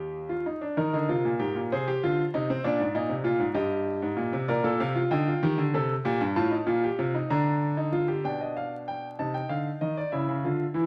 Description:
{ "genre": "classical, baroque-style 3-part fugue for grand piano", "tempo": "64 BPM (dotted quarters)", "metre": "6/8", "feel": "straight", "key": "Eb major", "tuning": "A4 = 441 Hz", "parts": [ { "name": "clear concert grand piano", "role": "solo", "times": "0.0-10.9 s", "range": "Eb2 to Bb5", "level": "-28 LUFS", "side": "equal", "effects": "none" } ], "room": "moderate stone room reverb, RT60 1.1 s", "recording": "vinyl crackle", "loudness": "-28 LUFS", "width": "mono", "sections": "0.8-8.2 A section; 8.2-10.9 B section", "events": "none", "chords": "0.0 Eb; 1.7 Ab/C; 2.6 Bb7; 3.6 Eb/G; 4.5 Bb; 5.4 Eb; 6.4 F7/A; 7.3 Bb/D; 8.2 G7/B; 9.2 Cm; 10.1 Dbm" }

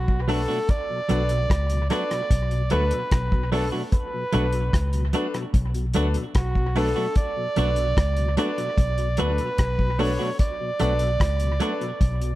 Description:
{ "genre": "roots reggae", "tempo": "74 BPM", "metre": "4/4", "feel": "straight", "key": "B minor", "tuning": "A4 = 440 Hz", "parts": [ { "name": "warm flugelhorn", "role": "melody", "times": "0.0-12.4 s", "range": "F#4 to D5", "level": "-28 LUFS", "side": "right 2 dB", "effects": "tape echo" }, { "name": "vintage muted fingered electric bass", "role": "bass", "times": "0.0-12.4 s", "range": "B1 to D2", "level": "-24 LUFS", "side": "equal", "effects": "none" }, { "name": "mellow tonewheel organ", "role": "accompaniment", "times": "0.1-12.3 s", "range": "B2 to D4", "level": "-35 LUFS", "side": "left 2 dB", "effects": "chorus vibrato, slow rotary speaker, dub echo" }, { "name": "cloth-damped thuddy drum kit", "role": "drums", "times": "0.1-12.4 s", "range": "hi-hat, kick drum, rim click", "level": "-24 LUFS", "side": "equal", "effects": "none" }, { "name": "clean electric guitar", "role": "accompaniment", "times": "0.3-11.8 s", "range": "F#3 to F#4", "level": "-28 LUFS", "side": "right 4 dB", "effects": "tape echo" }, { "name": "warm baby grand piano", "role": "stabs", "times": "0.3-11.8 s", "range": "D4 to B4", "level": "-31 LUFS", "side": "left 5 dB", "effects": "none" } ], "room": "light reverb", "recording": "none", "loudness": "-21 LUFS", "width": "side -16 dB against mid", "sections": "0.0-12.4 A section", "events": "none", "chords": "0.0 Bm7" }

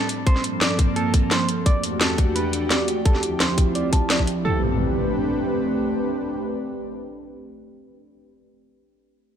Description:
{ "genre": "liquid drum and bass", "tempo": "172 BPM", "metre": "4/4", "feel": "straight", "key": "A minor", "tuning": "A4 = 440 Hz", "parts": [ { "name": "airy breathy pad", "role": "sustained chords", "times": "0.0-8.0 s", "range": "D2 to B5", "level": "-24 LUFS", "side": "right 1 dB", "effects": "chorus, vintage 12-bit sampler grit" }, { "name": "semi-hollow electric guitar", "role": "arpeggios", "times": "0.0-4.6 s", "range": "A4 to A5", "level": "-28 LUFS", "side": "right 1 dB", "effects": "low-pass filter, ping-pong delay" }, { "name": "drum and bass drum kit", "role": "drums", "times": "0.1-4.3 s", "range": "hi-hat, snare drum", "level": "-24 LUFS", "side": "equal", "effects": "none" }, { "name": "electronic kick drum", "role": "drums", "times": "0.3-4.3 s", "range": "none", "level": "-18 LUFS", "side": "equal", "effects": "none" }, { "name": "impact", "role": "sound effects", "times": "4.4-8.7 s", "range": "none", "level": "-27 LUFS", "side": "equal", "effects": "none" } ], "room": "moderate recital hall reverb, RT60 1.7 s", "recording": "none", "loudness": "-19 LUFS", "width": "side -9 dB against mid", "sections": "0.0-4.5 A section; 4.5-7.2 B section", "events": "filter sweep on clean electric guitar 0.0-4.5", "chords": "0.3 Gm11; 1.7 Em11; 3.1 Dm11; 4.5 Am11" }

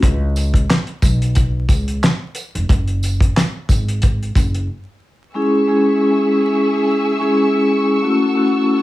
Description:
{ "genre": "hip hop, boom-bap hip-hop", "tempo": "90 BPM", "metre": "4/4", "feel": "swing 54% on 16ths", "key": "C# minor", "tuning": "A4 = 440 Hz", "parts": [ { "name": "upright bass", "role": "bass", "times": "0.0-4.7 s", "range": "E#1 to C#2", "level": "-19 LUFS", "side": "equal", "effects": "none" }, { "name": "cloth-damped thuddy drum kit", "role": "drums", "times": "0.0-4.7 s", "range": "handclaps, hi-hat, kick drum, snare drum", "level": "-16 LUFS", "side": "equal", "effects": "none" }, { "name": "tambourine", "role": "percussion", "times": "0.4-4.5 s", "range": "none", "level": "-33 LUFS", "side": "right 6 dB", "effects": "none" }, { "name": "vibraphone with soft mallets", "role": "accompaniment", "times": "5.3-8.8 s", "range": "G#3 to G#4", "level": "-14 LUFS", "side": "left 1 dB", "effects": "high-pass filter, low-pass filter, plate reverb" }, { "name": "warm studio string section", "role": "sustained chords", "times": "5.4-8.8 s", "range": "G#4 to E6", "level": "-23 LUFS", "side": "equal", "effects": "high-pass filter, low-pass filter, plate reverb" } ], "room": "moderate studio reverb, RT60 0.5 s", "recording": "vinyl crackle, studio reverb", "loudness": "-14 LUFS", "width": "side -16 dB against mid", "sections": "0.0-5.4 A section; 5.4-8.8 B section", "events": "break 0.0-5.4", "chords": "0.0 C#7(no3); 2.7 F#sus2; 5.4 C#m; 8.0 F#m7" }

